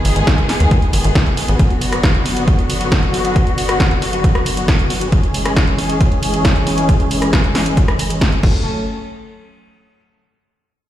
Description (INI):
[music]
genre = uplifting trance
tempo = 136 BPM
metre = 4/4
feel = straight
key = unclear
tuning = A4 = 440 Hz
[part]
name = rich studio string section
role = sustained chords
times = 0.0-8.6 s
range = D3 to A4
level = -19 LUFS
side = equal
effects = sidechain pumping, low-pass filter
[part]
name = tight sequencer bass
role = bass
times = 0.1-1.6, 8.4-8.6 s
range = F#1 to D#2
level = -15 LUFS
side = equal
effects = sidechain pumping
[part]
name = punchy analog drum machine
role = drums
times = 0.1-8.5 s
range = crash cymbal, hi-hat, rim click, snare drum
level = -21 LUFS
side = equal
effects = none
[part]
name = electronic kick drum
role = drums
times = 0.3-8.5 s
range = none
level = -16 LUFS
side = equal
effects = overdrive
[sound]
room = little or no reverb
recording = played on a big sound system in a bare room, stone room reverb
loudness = -13 LUFS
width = side -12 dB against mid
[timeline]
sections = 0.0-8.7 A section; 8.7-10.4 B section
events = filter sweep on string section 0.0-8.7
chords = 0.0 G#m; 1.6 Bm; 5.1 C#m; 8.4 F#m; 8.7 N.C.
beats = 0.27 0.71 1.15 | 1.59 2.04 2.48 2.92 | 3.36 3.80 4.24 4.68 | 5.12 5.57 6.01 6.45 | 6.89 7.33 7.77 8.21